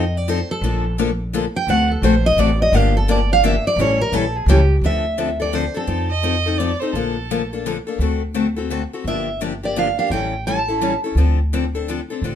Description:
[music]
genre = acoustic string swing (jazz manouche)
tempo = 170 BPM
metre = 3/4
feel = swing 62% on 8ths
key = D minor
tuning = A4 = 439 Hz
[part]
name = picked steel-string acoustic guitar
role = melody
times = 0.0-6.2, 9.1-11.0 s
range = G4 to A5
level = -20 LUFS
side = right 3 dB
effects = none
[part]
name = picked steel-string acoustic guitar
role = accompaniment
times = 0.0-12.4 s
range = D3 to A4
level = -22 LUFS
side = left 5 dB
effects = none
[part]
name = upright bass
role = bass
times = 0.0-12.4 s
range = G1 to F2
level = -20 LUFS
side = equal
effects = none
[part]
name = warm violin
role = second line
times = 6.1-7.6 s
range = A4 to Eb5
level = -24 LUFS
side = right 5 dB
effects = none
[sound]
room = light reverb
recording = minimal, uncompressed stereo recording, lossy compression artefacts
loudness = -17 LUFS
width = side -9 dB against mid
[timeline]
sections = 0.0-4.8 A section; 4.8-12.4 B section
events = steel-string acoustic guitar solo 0.0-4.8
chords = 0.0 F7; 0.6 Bbmaj7; 1.7 D7; 2.7 Gm7; 3.8 A7; 4.8 Dm7; 5.9 F7; 6.9 Bbmaj7; 8.0 D7; 9.1 Gm7; 10.1 A7; 11.2 Dm7

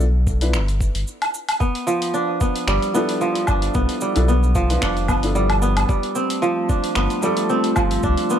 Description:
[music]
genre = organic downtempo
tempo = 112 BPM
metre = 4/4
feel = swing 55% on 16ths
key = G mixolydian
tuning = A4 = 440 Hz
[part]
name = felt-muted upright piano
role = accompaniment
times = 0.0-8.4 s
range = F3 to B4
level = -26 LUFS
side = left 2 dB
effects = sidechain pumping, tape echo
[part]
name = warm sub bass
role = bass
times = 0.0-8.1 s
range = F1 to C2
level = -20 LUFS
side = equal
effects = sidechain pumping
[part]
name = deep house drum kit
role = drums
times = 0.0-8.4 s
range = cabasa, finger snaps, hi-hat, woodblock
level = -26 LUFS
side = equal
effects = none
[part]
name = electronic kick drum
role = drums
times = 0.3-8.2 s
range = none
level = -22 LUFS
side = equal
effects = overdrive
[part]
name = kora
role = arpeggios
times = 1.6-8.4 s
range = F3 to D4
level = -21 LUFS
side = right 1 dB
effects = tape echo
[part]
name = warbly tape-like pad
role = sustained chords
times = 6.2-8.4 s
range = A3 to C6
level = -26 LUFS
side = equal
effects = chorus, built-in reverb, sidechain pumping
[sound]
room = little or no reverb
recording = dry, gritty hardware recording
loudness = -17 LUFS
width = side -9 dB against mid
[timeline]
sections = 0.0-8.4 A section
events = none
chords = 0.0 G13; 5.9 F

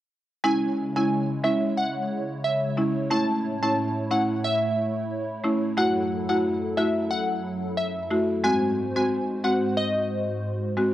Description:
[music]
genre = dancehall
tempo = 90 BPM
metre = 4/4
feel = swing 56% on 16ths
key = C# harmonic minor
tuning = A4 = 439 Hz
[part]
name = glassy wavetable pluck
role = melody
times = 0.4-10.3 s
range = D#5 to A5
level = -28 LUFS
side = equal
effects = chorus, cassette tape, analog delay
[part]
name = buzzing marimba with hard mallets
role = accompaniment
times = 0.4-10.9 s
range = G#3 to F#4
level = -25 LUFS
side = equal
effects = cassette tape
[part]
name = hollow soft pad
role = sustained chords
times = 0.4-10.9 s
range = F#2 to C#5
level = -30 LUFS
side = equal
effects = ensemble chorus, cassette tape
[sound]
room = moderate spring reverb, RT60 2.9 s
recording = home recording on cassette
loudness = -22 LUFS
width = side -13 dB against mid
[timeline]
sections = 0.4-10.9 A section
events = none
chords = 0.4 C#m; 3.1 A; 5.8 F#m7; 8.4 G#7

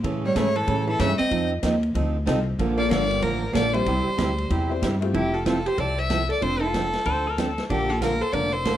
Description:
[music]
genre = country, western swing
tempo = 188 BPM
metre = 4/4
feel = swing 62% on 8ths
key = F major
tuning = A4 = 436 Hz
[part]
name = picked steel-string acoustic guitar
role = accompaniment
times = 0.0-8.8 s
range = C3 to A4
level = -27 LUFS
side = right 4 dB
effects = none
[part]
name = upright bass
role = bass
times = 0.0-8.8 s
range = F1 to A2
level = -26 LUFS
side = left 1 dB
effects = none
[part]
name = vintage drum kit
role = drums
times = 0.0-8.7 s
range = hi-hat, kick drum, ride cymbal, snare drum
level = -33 LUFS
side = left 1 dB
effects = none
[part]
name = clear fiddle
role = melody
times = 0.3-8.8 s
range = G4 to E5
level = -26 LUFS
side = left 1 dB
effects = plate reverb
[part]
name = archtop guitar, miked and amplified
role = second line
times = 0.3-8.8 s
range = E3 to C5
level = -29 LUFS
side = right 1 dB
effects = none
[part]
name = tack piano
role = accompaniment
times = 2.3-5.1 s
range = G3 to C5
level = -30 LUFS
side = left 6 dB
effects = none
[part]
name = pedal steel guitar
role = second line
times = 7.1-7.6 s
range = A4 to C5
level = -31 LUFS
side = left 4 dB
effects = none
[sound]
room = moderate studio reverb, RT60 0.8 s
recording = none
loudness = -21 LUFS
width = side -12 dB against mid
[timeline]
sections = 0.0-5.1 A section; 5.1-8.8 B section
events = none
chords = 0.0 A; 1.3 F7; 2.6 Bbmaj7; 3.9 C; 5.1 Fmaj7; 6.4 Dm7/F; 7.7 Bbmaj7

